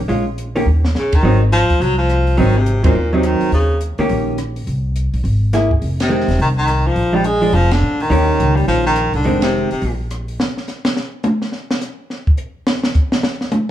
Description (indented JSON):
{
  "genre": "jazz, small-group swing and bop",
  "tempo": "210 BPM",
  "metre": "4/4",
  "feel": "swing 62% on 8ths",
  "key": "Eb mixolydian",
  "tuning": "A4 = 438 Hz",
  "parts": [
    { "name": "upright bass", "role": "bass", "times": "0.0-10.4 s", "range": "Fb1 to Bb2", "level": "-17 LUFS", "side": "equal", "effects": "none" },
    { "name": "vintage hollow-body jazz guitar", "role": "accompaniment", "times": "0.1-9.7 s", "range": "Eb3 to G#4", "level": "-19 LUFS", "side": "right 1 dB", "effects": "none" },
    { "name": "compact cocktail drum kit", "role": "drums", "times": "0.1-13.6 s", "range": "hi-hat, kick drum, ride cymbal, rim click, snare drum, toms", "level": "-18 LUFS", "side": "equal", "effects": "none" },
    { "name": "warm baritone saxophone", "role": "melody", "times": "1.0-3.8, 6.0-10.0 s", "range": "Bb2 to Ab3", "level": "-17 LUFS", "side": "left 1 dB", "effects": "none" }
  ],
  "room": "moderate large studio reverb, RT60 1.2 s",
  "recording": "band playing live in one room",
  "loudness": "-14 LUFS",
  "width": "side -12 dB against mid",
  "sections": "0.0-10.4 A section; 10.4-13.7 B section",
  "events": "drum fill 0.7; band accent 1.1, 2.8, 6.0, 7.7, 9.4; drum solo 10.4-13.7",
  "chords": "0.1 Bbm7; 0.7 Eb5; 1.2 Ab7; 3.5 Eb7; 4.7 Caug7; 5.8 Fm7; 7.0 Bb7; 8.1 Eb7; 9.2 Fm7; 9.8 Bbsus2; 10.4 N.C."
}